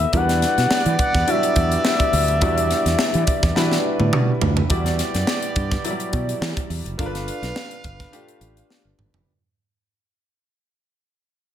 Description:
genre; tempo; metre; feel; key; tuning
polished 1980s jazz-funk pop; 105 BPM; 4/4; swing 54% on 16ths; E minor; A4 = 440 Hz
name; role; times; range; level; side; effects
expressive portamento lead; melody; 0.0-4.1 s; E5 to F#5; -22 LUFS; left 3 dB; chorus
clear grand piano; accompaniment; 0.0-9.3 s; F#3 to D5; -25 LUFS; equal; wide subtle chorus
fretless electric bass; bass; 0.0-9.2 s; F1 to E3; -22 LUFS; right 1 dB; none
crisp fusion drum kit; drums; 0.0-9.3 s; hi-hat, kick drum, snare drum, toms; -23 LUFS; equal; gated reverb
clear horn section; second line; 0.1-8.9 s; B3 to F5; -28 LUFS; right 5 dB; none
room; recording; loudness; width
light reverb; none; -18 LUFS; side -10 dB against mid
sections
0.0-4.7 A section; 4.7-9.3 B section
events
drum fill 3.6-4.7, 8.7-9.3; fade-out 4.7-9.3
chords
0.1 Em9; 7.0 G9

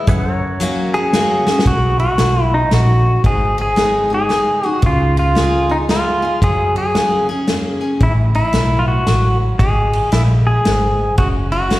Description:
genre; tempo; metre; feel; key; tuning
honky-tonk and classic country; 113 BPM; 3/4; swing 64% on 8ths; B major; A4 = 440 Hz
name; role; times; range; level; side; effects
dark upright piano; second line; 0.0-1.1 s; E6; -35 LUFS; right 4 dB; none
picked steel-string acoustic guitar; accompaniment; 0.0-11.8 s; F#2 to G#4; -22 LUFS; left 1 dB; slapback echo
pedal steel guitar; sustained chords; 0.0-1.7 s; A#4 to F#5; -26 LUFS; left 1 dB; lush chorus
vintage muted fingered electric bass; bass; 0.1-11.8 s; F#1 to F#2; -17 LUFS; equal; none
unplugged drum kit; drums; 0.1-11.8 s; hi-hat, kick drum, ride cymbal, snare drum; -20 LUFS; equal; none
pedal steel guitar; melody; 0.9-11.8 s; D#4 to G#4; -17 LUFS; equal; slapback echo
room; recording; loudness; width
light reverb, studio ambience; live gig heard through the venue's PA, recital hall reverb; -13 LUFS; side -16 dB against mid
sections
0.0-1.7 A section; 1.7-11.8 B section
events
drum fill 1.4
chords
0.1 F#; 1.7 B5; 3.2 G#m; 4.8 C#7; 6.4 F#add9; 8.0 A5; 9.6 G#sus2; 11.2 F#7

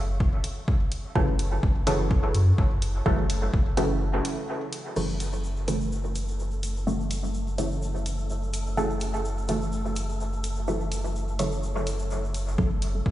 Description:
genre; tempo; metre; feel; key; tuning
dub techno; 126 BPM; 4/4; swing 54% on 16ths; F# minor; A4 = 440 Hz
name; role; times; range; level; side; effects
warm sub bass; bass; 0.0-13.1 s; F#1 to F#2; -28 LUFS; equal; sidechain pumping
electronic kick drum; drums; 0.2-3.6, 12.6-13.1 s; none; -25 LUFS; equal; overdrive
deep house drum kit; drums; 0.4-12.9 s; crash cymbal, hi-hat; -37 LUFS; equal; overdrive
filtered dub chord stab; stabs; 1.2-12.8 s; C#3 to A3; -29 LUFS; equal; chorus, phaser, sidechain pumping, dub echo
tube shaker; percussion; 5.0-12.6 s; none; -42 LUFS; left 1 dB; none
wind-like tuned noise texture; texture; 5.6-13.1 s; A3 to A4; -41 LUFS; equal; built-in reverb, sidechain pumping
room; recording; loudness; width
light reverb; played on a big sound system in a bare room, stone room reverb, nothing above 10.5 kHz; -24 LUFS; side -14 dB against mid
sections
0.0-5.0 A section; 5.0-12.6 B section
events
break 4.0-5.0; filter sweep on synth stab 5.0-12.6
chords
0.0 F#m7

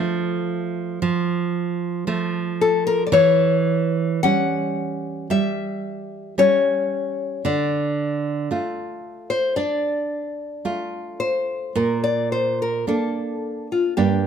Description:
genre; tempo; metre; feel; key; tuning
romantic duo for nylon-string guitar and classical guitar; 56 BPM; 4/4; rubato; D minor; A4 = 441 Hz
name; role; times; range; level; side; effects
nylon-string guitar; melody; 0.0-14.3 s; F4 to F#5; -21 LUFS; left 5 dB; none
nylon-string guitar; accompaniment; 0.0-14.3 s; G2 to F4; -23 LUFS; right 5 dB; none
room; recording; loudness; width
light reverb; close, detailed microphones; -20 LUFS; side -7 dB against mid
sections
0.0-14.3 A section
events
none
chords
0.0 Dm (rootless); 3.1 C#dim/E; 7.5 Dm; 11.8 Bb

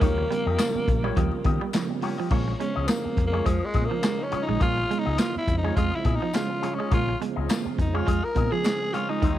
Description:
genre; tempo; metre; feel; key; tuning
funk; 104 BPM; 4/4; swing 56% on 16ths; Bb dorian; A4 = 440 Hz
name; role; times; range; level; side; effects
growling tenor saxophone; melody; 0.0-9.4 s; F3 to Bb4; -28 LUFS; left 1 dB; cassette tape, analog delay
electric guitar with an envelope filter; accompaniment; 0.0-9.4 s; F4 to Eb5; -34 LUFS; left 8 dB; tremolo, cassette tape
electric guitar at the edge of break-up; riff; 0.0-9.4 s; Eb3 to Bb3; -32 LUFS; right 8 dB; cassette tape
mellow tonewheel organ; stabs; 0.0-9.2 s; C3 to Eb4; -34 LUFS; right 6 dB; chorus vibrato, fast rotary speaker, cassette tape
vintage muted fingered electric bass; bass; 0.0-9.4 s; Bb1 to Eb3; -28 LUFS; left 1 dB; none
vintage drum kit; drums; 0.0-9.4 s; crash cymbal, handclaps, hi-hat, kick drum, snare drum; -26 LUFS; left 1 dB; cassette tape
congas; percussion; 0.0-9.4 s; none; -36 LUFS; right 8 dB; none
tambourine; percussion; 0.6-8.8 s; none; -41 LUFS; left 12 dB; none
room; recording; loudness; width
light reverb, small room ambience; home recording on cassette; -22 LUFS; side -13 dB against mid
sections
0.0-2.3 A section; 2.3-9.4 B section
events
tenor saxophone solo 2.3-9.4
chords
0.0 Eb9; 2.3 Bbm7

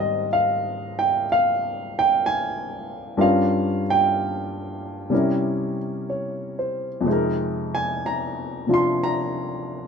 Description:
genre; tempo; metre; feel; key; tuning
jazz ballad; 62 BPM; 4/4; swing 69% on 8ths; unclear; A4 = 440 Hz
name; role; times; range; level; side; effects
clear baby grand piano; solo; 0.0-9.9 s; F2 to C6; -21 LUFS; equal; none
room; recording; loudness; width
light reverb; band playing live in one room; -20 LUFS; side -6 dB against mid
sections
0.0-9.9 A section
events
none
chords
0.0 Abmaj9; 3.2 Gm7b5; 5.1 C7b9; 7.1 Fm7

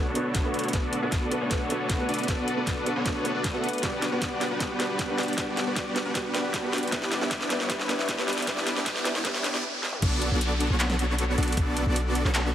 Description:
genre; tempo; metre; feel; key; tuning
future bass; 155 BPM; 4/4; half-time; B minor; A4 = 439 Hz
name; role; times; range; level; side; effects
muted studio string section; sustained chords; 0.0-10.0 s; G3 to F#5; -35 LUFS; left 3 dB; vintage 12-bit sampler grit, sidechain pumping, low-pass filter
dense compressed supersaw; riff; 0.0-12.5 s; B3 to F#5; -29 LUFS; equal; sidechain pumping, low-pass filter, tape echo
felt-muted upright piano; accompaniment; 0.1-9.3 s; G3 to B4; -34 LUFS; right 2 dB; sidechain pumping, tape echo
dubstep drum kit; drums; 0.2-12.4 s; crash cymbal, handclaps, hi-hat, snare drum, toms; -30 LUFS; equal; high-pass filter on snare, small room ambience, high-pass filter on hats, high-pass filter on toms, high-pass filter on cymbals
electronic kick drum; drums; 0.3-11.7 s; none; -30 LUFS; equal; small room ambience
riser and downlifter; sound effects; 8.2-12.5 s; none; -36 LUFS; right 1 dB; none
warm 808-style bass; bass; 10.0-12.5 s; B1; -27 LUFS; equal; sidechain pumping
room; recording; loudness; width
light reverb; heavily compressed radio sound, multiband compression, high-pass filter; -24 LUFS; side -10 dB against mid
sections
0.0-10.0 A section; 10.0-12.5 B section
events
build-up 0.0-10.0; drum fill 0.0-9.6, 9.8; filter sweep 0.0-10.0; break 9.6-10.0; drop 10.0-12.5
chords
0.0 Bm7; 3.8 Gmaj7; 6.9 Em7; 10.0 Bm7

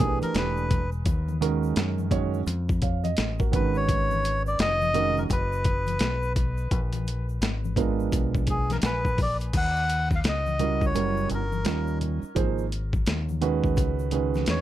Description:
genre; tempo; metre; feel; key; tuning
hip hop, jazz-hop; 85 BPM; 4/4; swing 62% on 16ths; Eb minor; A4 = 441 Hz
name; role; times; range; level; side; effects
melodica; melody; 0.0-14.6 s; Ab4 to Gb5; -29 LUFS; left 1 dB; analog delay
dark concert grand piano; accompaniment; 0.0-14.6 s; Eb3 to Ab5; -28 LUFS; right 9 dB; none
deep dub fingered electric bass; bass; 0.0-14.6 s; E1 to Gb2; -28 LUFS; left 1 dB; none
boom bap sampler-style drum kit; drums; 0.0-14.6 s; crash cymbal, hi-hat, kick drum, snare drum; -27 LUFS; left 1 dB; overdrive
congas and egg shaker; percussion; 0.0-14.6 s; none; -37 LUFS; left 7 dB; none
room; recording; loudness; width
light reverb; dark, warm production; -23 LUFS; side -13 dB against mid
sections
0.0-9.5 A section; 9.5-14.6 B section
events
grand piano fill 8.5-9.5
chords
0.4 Em7; 1.1 Ebm9; 3.5 Abm9; 6.7 Bb7b9; 9.5 Ebm7; 10.9 Gb7b9; 11.7 Eb7; 12.4 Ab13; 13.8 Db7sus4

